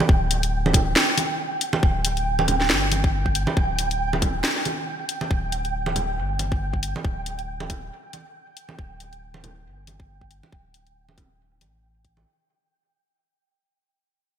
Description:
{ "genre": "deep dubstep", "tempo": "138 BPM", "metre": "4/4", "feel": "swing 57% on 16ths, half-time", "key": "unclear", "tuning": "A4 = 440 Hz", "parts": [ { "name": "congas", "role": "percussion", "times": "0.0-12.2 s", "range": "none", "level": "-28 LUFS", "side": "right 3 dB", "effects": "dub echo" }, { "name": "flickering grainy texture", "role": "texture", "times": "0.0-12.3 s", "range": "G5", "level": "-29 LUFS", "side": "right 2 dB", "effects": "built-in reverb, lush chorus" }, { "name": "soft dub sub bass", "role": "bass", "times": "0.1-12.3 s", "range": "D1 to A1", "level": "-27 LUFS", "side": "equal", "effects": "none" }, { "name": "electronic kick drum", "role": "drums", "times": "0.1-12.1 s", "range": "none", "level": "-21 LUFS", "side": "equal", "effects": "none" }, { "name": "garage drum kit", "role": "drums", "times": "0.3-12.1 s", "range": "hi-hat, snare drum", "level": "-23 LUFS", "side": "left 1 dB", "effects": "gated reverb" } ], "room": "light reverb", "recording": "bright 1980s-style digital production", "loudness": "-21 LUFS", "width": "side -9 dB against mid", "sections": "0.0-12.3 A section", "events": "fade-out 0.0-12.3", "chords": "0.0 D5" }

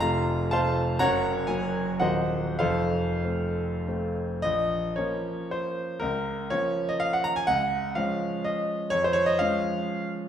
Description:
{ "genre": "classical, romantic triple-time dance for piano with dotted rhythms", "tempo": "89-137 BPM", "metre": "3/4", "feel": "rubato", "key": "Bb minor", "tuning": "A4 = 435 Hz", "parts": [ { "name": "clear concert grand piano", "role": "solo", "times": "0.0-10.3 s", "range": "Eb1 to C6", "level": "-24 LUFS", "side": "equal", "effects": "none" } ], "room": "wet recital hall reverb, RT60 1.6 s", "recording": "heard from further back in the room", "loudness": "-24 LUFS", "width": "side -9 dB against mid", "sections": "0.0-4.4 A section; 4.4-10.3 B section", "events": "none", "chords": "0.0 F; 1.0 Gb; 2.0 Cdim/Eb; 2.6 F; 4.4 Bbm; 6.0 Bbm/Db; 7.5 Db; 8.9 Db/F" }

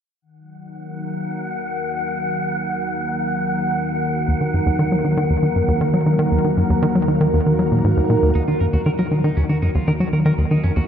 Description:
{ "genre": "ambient", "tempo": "118 BPM", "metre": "4/4", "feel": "straight", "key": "Eb minor", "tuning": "A4 = 440 Hz", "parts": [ { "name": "lush unison pad", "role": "sustained chords", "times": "0.6-10.9 s", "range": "Eb3 to Bb4", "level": "-22 LUFS", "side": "equal", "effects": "chorus, phaser" }, { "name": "analog drone", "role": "bass", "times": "2.7-10.9 s", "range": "Eb2", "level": "-30 LUFS", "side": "equal", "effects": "chorus" }, { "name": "wind-like tuned noise texture", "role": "texture", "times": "1.0-8.4 s", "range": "Gb5", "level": "-27 LUFS", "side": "equal", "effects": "built-in reverb" }, { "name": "tight sequencer bass", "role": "riff", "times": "4.3-10.8 s", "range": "Eb2 to Gb3", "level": "-17 LUFS", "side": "equal", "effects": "ping-pong delay" }, { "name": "clean electric guitar", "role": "arpeggios", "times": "8.4-10.8 s", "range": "Eb3 to Bb4", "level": "-33 LUFS", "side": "right 2 dB", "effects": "auto-pan, ping-pong delay" } ], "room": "wet cathedral reverb, RT60 6.0 s", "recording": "in a vast, echoing space", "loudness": "-17 LUFS", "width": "side -8 dB against mid", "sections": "0.2-8.4 A section; 8.4-10.9 B section", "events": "fade-in on synth drone 0.2-8.4; filter sweep on analog synth pad 0.2-8.4", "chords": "0.2 Ebm" }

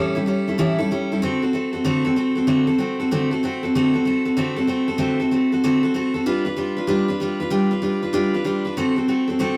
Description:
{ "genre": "rock", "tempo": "191 BPM", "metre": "4/4", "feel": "swing 64% on 8ths", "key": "D mixolydian", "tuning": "A4 = 440 Hz", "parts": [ { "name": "picked steel-string acoustic guitar", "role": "solo", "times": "0.0-9.6 s", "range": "A2 to B4", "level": "-21 LUFS", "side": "equal", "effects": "none" } ], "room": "moderate stone room reverb, RT60 1.2 s", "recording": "rough rehearsal-room recording, warm saturation", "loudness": "-21 LUFS", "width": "mono", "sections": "0.0-1.2 A section; 1.2-9.6 A section", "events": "none", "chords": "0.0 A7; 1.2 D7; 6.3 G7; 8.8 D7" }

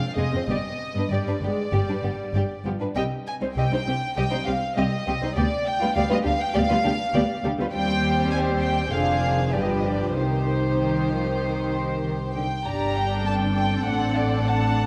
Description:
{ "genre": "quick classical-period movement for string orchestra", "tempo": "99 BPM", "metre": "4/4", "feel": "straight", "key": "C minor", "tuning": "A4 = 440 Hz", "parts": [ { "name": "warm symphonic violin section", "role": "melody", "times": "0.0-14.9 s", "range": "C5 to Bb5", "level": "-31 LUFS", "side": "equal", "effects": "none" }, { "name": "warm studio violin section", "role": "second line", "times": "0.2-14.9 s", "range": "Ab3 to A5", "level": "-31 LUFS", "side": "equal", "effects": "none" }, { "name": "dark symphonic viola section", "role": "accompaniment", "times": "0.2-14.9 s", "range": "D3 to Eb4", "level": "-31 LUFS", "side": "equal", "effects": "none" }, { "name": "dark studio double bass section", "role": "bass", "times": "0.2-14.9 s", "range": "F1 to Eb2", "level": "-30 LUFS", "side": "equal", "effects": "none" }, { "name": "warm symphonic cello section", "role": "bass", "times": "0.2-14.9 s", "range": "C2 to F3", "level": "-32 LUFS", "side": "equal", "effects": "none" } ], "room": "moderate concert hall reverb, RT60 2.0 s", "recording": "dark, warm production", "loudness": "-24 LUFS", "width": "mono", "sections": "0.0-12.7 A section; 12.7-14.9 B section", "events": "none", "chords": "0.5 G5; 3.0 Cm; 5.4 G7/D; 7.7 Cm/Eb; 8.9 Dm7b5/F; 9.5 G7; 10.2 Cm; 12.7 Gm; 13.9 D7/A" }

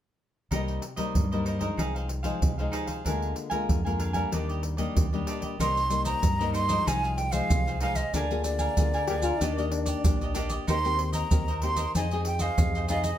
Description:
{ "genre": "samba and choro", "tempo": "94 BPM", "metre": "4/4", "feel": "straight", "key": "C minor", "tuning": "A4 = 439 Hz", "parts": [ { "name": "cavaquinho", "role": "accompaniment", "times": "0.5-13.2 s", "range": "D4 to Ab5", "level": "-34 LUFS", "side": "right 4 dB", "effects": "none" }, { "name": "nylon-string guitar", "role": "accompaniment", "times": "0.5-13.2 s", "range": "G2 to Ab4", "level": "-33 LUFS", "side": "left 6 dB", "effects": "none" }, { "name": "deep dub fingered electric bass", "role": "bass", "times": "0.5-13.1 s", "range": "Bb1 to G2", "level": "-30 LUFS", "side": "equal", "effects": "none" }, { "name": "surdo, pandeiro and maracas", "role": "percussion", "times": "0.5-13.2 s", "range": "none", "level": "-29 LUFS", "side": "right 1 dB", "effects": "none" }, { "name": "breathy jazz flute", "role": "melody", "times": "5.6-13.2 s", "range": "D5 to C6", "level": "-30 LUFS", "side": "right 1 dB", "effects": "none" }, { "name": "mellow trombone", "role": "second line", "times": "9.1-10.5 s", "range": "D4 to G4", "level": "-32 LUFS", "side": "left 6 dB", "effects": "none" } ], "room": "light reverb", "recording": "none", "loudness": "-25 LUFS", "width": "side -11 dB against mid", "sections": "0.5-5.6 A section; 5.6-13.2 B section", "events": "none", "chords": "0.5 Cm7; 1.8 Fm7/C; 3.1 Bb7/D; 4.3 Ebmaj7; 5.6 Cm7; 6.9 Fm7/C; 8.1 Bb7/D; 9.4 Ebmaj7; 10.7 Cm7/Eb; 11.9 Fm7" }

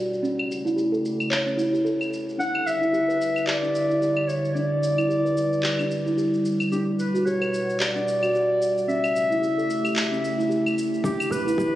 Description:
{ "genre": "organic downtempo", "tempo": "111 BPM", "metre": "4/4", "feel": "swing 58% on 16ths", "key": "E dorian", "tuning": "A4 = 438 Hz", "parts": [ { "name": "warbly tape-like pad", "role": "sustained chords", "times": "0.0-11.8 s", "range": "B2 to F#5", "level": "-29 LUFS", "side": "equal", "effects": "chorus, built-in reverb, sidechain pumping" }, { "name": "steel tongue drum", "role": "arpeggios", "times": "0.0-11.7 s", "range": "C#4 to C#5", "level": "-25 LUFS", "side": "right 1 dB", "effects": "low-pass filter, digital delay" }, { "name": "electronic shaker, claves and handclaps", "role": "drums", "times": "0.1-11.7 s", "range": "none", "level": "-30 LUFS", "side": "equal", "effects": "low-pass filter on perc, low-pass filter on snare" }, { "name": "mellow clarinet", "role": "melody", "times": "2.4-11.8 s", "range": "G4 to F#5", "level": "-25 LUFS", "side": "left 1 dB", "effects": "digital delay" }, { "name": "electronic kick drum", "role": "drums", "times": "11.0-11.7 s", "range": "none", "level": "-30 LUFS", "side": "equal", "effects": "none" }, { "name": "woody FM bass", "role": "bass", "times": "11.3-11.7 s", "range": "E1", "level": "-34 LUFS", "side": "right 1 dB", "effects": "sidechain pumping" } ], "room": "moderate huge ambient reverb, RT60 5.0 s", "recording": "recorded on a phone in the room, studio reverb", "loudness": "-21 LUFS", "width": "side -14 dB against mid", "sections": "0.0-11.0 A section", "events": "none", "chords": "0.2 A7; 2.4 Em7; 6.7 Gmaj7; 8.9 A7; 11.0 Em7" }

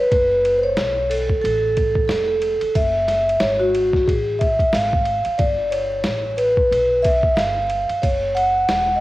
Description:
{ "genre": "hip hop, jazz-hop", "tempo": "91 BPM", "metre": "4/4", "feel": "swing 60% on 16ths", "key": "unclear", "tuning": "A4 = 439 Hz", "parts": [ { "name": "vibraphone with soft mallets", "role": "accompaniment", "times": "0.0-9.0 s", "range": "F#4 to F#5", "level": "-18 LUFS", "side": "equal", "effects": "none" }, { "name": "upright bass", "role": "bass", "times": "0.1-9.0 s", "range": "E1 to B1", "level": "-28 LUFS", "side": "equal", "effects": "none" }, { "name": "lo-fi sampler-style drum kit", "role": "drums", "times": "0.1-8.9 s", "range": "hi-hat, kick drum, ride cymbal, snare drum", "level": "-24 LUFS", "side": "equal", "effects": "cassette tape" } ], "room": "light reverb", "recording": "home recording on cassette, vinyl crackle", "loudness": "-16 LUFS", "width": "side -17 dB against mid", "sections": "0.0-9.0 A section", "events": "vibraphone solo 0.0-9.0", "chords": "0.1 Faug; 2.8 F#m9; 4.7 Fm/Ab; 5.4 Gadd9; 7.4 Fsus2/G; 8.0 F#7(no3)" }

